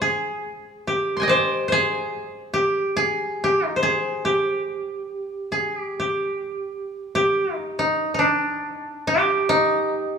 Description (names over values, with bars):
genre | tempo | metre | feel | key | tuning
japanese traditional | 70 BPM | 2/4 | rubato | G miyako bushi | A4 = 440 Hz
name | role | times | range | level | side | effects
koto | solo | 0.0-10.2 s | C4 to C6 | -20 LUFS | equal | none
room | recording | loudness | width
moderate recital hall reverb, RT60 1.6 s | small room ambience | -20 LUFS | side -6 dB against mid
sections
0.0-6.5 A section; 6.5-10.2 B section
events
none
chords
none